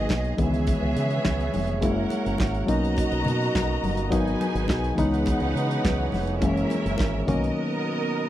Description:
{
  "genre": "disco",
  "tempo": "104 BPM",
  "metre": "4/4",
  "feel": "straight",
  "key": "unclear",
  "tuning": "A4 = 440 Hz",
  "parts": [
    { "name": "warm symphonic string section", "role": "second line", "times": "0.0-8.3 s", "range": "B3 to A#5", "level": "-30 LUFS", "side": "right 2 dB", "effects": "none" },
    { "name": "barky reed electric piano", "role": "accompaniment", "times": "0.0-8.3 s", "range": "D#3 to A#4", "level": "-27 LUFS", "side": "left 2 dB", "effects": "overdrive" },
    { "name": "clear French horn section", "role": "sustained chords", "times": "0.0-8.3 s", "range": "B2 to E5", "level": "-32 LUFS", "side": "right 4 dB", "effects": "none" },
    { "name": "fingered electric bass with an envelope filter", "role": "bass", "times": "0.0-7.5 s", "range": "E#1 to C#3", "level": "-28 LUFS", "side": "right 1 dB", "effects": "none" },
    { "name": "modern studio drum kit", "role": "drums", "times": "0.1-7.6 s", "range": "handclaps, hi-hat, kick drum, snare drum", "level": "-28 LUFS", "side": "right 1 dB", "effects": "none" },
    { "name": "congas", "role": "percussion", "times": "0.1-7.4 s", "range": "none", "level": "-33 LUFS", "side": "left 4 dB", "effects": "none" }
  ],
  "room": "little or no reverb",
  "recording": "dry, close 1970s-style studio recording",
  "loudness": "-22 LUFS",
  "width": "side -13 dB against mid",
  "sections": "0.0-8.3 A section",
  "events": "break 7.6-8.3",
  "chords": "0.4 C#m9; 1.8 F#9; 2.7 Bmaj7; 4.1 G#m7; 5.0 C#m9; 6.4 F#9; 7.3 Bmaj7",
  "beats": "0.10 0.68 1.25 | 1.83 2.40 2.98 3.55 | 4.12 4.70 5.27 5.85 | 6.42 7.00 7.57 8.14"
}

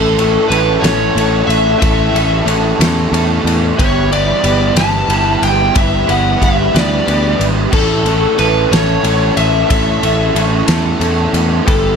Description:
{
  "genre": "indie rock",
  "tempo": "61 BPM (dotted quarters)",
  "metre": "6/8",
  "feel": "straight",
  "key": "A mixolydian",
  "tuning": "A4 = 440 Hz",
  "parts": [
    { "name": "lead guitar through a small cranked amp", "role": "melody", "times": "0.0-12.0 s", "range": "A4 to A5", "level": "-16 LUFS", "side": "left 1 dB", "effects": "overdrive, tape echo" },
    { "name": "electric guitar through a small old amp", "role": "riff", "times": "0.0-12.0 s", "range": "E3 to A4", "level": "-20 LUFS", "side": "left 8 dB", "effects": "none" },
    { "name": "overdriven electric guitar", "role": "riff", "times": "0.0-12.0 s", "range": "A2 to B4", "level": "-18 LUFS", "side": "right 8 dB", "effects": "ensemble chorus, tape echo" },
    { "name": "picked electric bass", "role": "bass", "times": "0.0-12.0 s", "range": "G1 to E2", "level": "-16 LUFS", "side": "equal", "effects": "none" },
    { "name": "loose indie drum kit", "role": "drums", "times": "0.2-11.8 s", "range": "crash cymbal, kick drum, ride cymbal, snare drum", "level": "-18 LUFS", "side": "equal", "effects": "none" }
  ],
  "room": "moderate studio reverb, RT60 0.7 s",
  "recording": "none",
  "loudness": "-11 LUFS",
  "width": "side -6 dB against mid",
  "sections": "0.0-12.0 A section",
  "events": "none",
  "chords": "0.0 A; 3.8 Em7/G; 7.7 A",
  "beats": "0.82 | 1.81 2.79 | 3.78 4.77 | 5.75 6.74 | 7.72 8.71 | 9.69 10.68 | 11.66"
}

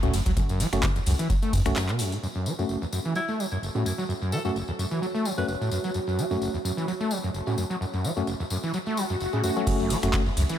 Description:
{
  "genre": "acid house",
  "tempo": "129 BPM",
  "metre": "4/4",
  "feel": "swing 54% on 16ths",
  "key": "F# minor",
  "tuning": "A4 = 440 Hz",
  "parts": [
    { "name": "overdriven acid bass", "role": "riff", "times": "0.0-10.6 s", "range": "F#1 to A3", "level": "-28 LUFS", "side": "equal", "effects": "distortion, tube saturation, lush chorus, sidechain pumping, dub echo" },
    { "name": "tine electric piano", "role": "stabs", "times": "0.0-10.2 s", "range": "A3 to G#4", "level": "-32 LUFS", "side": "left 1 dB", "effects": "fast stereo tremolo, low-pass filter, dub echo" },
    { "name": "saturated sub bass", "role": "bass", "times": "0.0-1.7, 9.7-10.4 s", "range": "F#1 to F#2", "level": "-27 LUFS", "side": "equal", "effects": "sidechain pumping" },
    { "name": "electro analog drum machine", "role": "drums", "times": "0.0-2.2, 9.7-10.6 s", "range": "crash cymbal, finger snaps, handclaps, hi-hat, ride cymbal", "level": "-33 LUFS", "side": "equal", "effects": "none" },
    { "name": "tambourine", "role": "percussion", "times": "0.0-10.6 s", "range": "none", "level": "-38 LUFS", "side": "left 4 dB", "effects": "dub echo" },
    { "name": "natural country drum kit", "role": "drums", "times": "0.1-2.1, 9.7-10.5 s", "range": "hi-hat, snare drum", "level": "-43 LUFS", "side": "left 2 dB", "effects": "none" },
    { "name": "electronic kick drum", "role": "drums", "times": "0.3-1.6, 9.7-10.2 s", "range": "none", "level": "-26 LUFS", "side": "equal", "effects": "none" },
    { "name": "deep dark ambient pad", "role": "texture", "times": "3.4-9.7 s", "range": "F#4 to A5", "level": "-36 LUFS", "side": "right 3 dB", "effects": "chorus, built-in reverb, sidechain pumping" },
    { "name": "bright alto saxophone", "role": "melody", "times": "3.2-5.6 s", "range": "E4 to B4", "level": "-36 LUFS", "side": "left 1 dB", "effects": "dub echo" },
    { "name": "swell", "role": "sound effects", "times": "8.9-9.7 s", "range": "none", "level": "-34 LUFS", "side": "left 3 dB", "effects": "none" }
  ],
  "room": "light reverb, studio reverb",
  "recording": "echo-heavy mix",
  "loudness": "-24 LUFS",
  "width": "side -10 dB against mid",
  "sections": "0.0-2.2 A section; 2.2-9.7 B section",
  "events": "drop 0.0-2.2; break 1.8-2.2; filter sweep on acid bass 2.2-9.7; filter sweep on tine electric piano 2.2-9.7; swell 8.9-9.7",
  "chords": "0.0 F#m",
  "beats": "| 0.37 0.83 1.30 1.76 | 2.23 2.69 3.16 3.62 | 4.09 4.55 5.02 5.49 | 5.95 6.42 6.88 7.34 | 7.81 8.28 8.74 9.21 | 9.67 10.14"
}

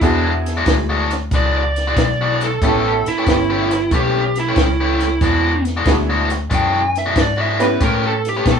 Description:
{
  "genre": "electric blues shuffle",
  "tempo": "92 BPM",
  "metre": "4/4",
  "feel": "swing 68% on 8ths",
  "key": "unclear",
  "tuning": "A4 = 440 Hz",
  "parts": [
    { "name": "tack piano", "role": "accompaniment", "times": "0.0-7.8 s", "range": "B3 to B4", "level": "-21 LUFS", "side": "right 1 dB", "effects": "none" },
    { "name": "overdriven electric guitar", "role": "riff", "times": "0.0-8.5 s", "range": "E3 to B4", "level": "-20 LUFS", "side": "left 3 dB", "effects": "none" },
    { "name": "vintage muted fingered electric bass", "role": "bass", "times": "0.0-8.6 s", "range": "G1 to B2", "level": "-21 LUFS", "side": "left 1 dB", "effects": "none" },
    { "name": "compact cocktail drum kit", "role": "drums", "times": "0.0-8.6 s", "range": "hi-hat, kick drum, snare drum", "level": "-20 LUFS", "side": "equal", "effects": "none" },
    { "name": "biting lead guitar", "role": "melody", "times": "1.4-8.6 s", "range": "E4 to G5", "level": "-20 LUFS", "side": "right 3 dB", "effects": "overdrive" }
  ],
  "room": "moderate small room reverb, RT60 0.5 s",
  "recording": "band playing live in one room",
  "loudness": "-14 LUFS",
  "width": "side -6 dB against mid",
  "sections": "0.0-8.6 A section",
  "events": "lead electric guitar solo 0.0-8.6",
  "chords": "0.0 E9; 2.6 A9; 5.2 E9; 7.8 A9",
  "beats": "| 0.02 0.67 1.32 1.97 | 2.62 3.27 3.92 4.57 | 5.22 5.87 6.52 7.17 | 7.82 8.47"
}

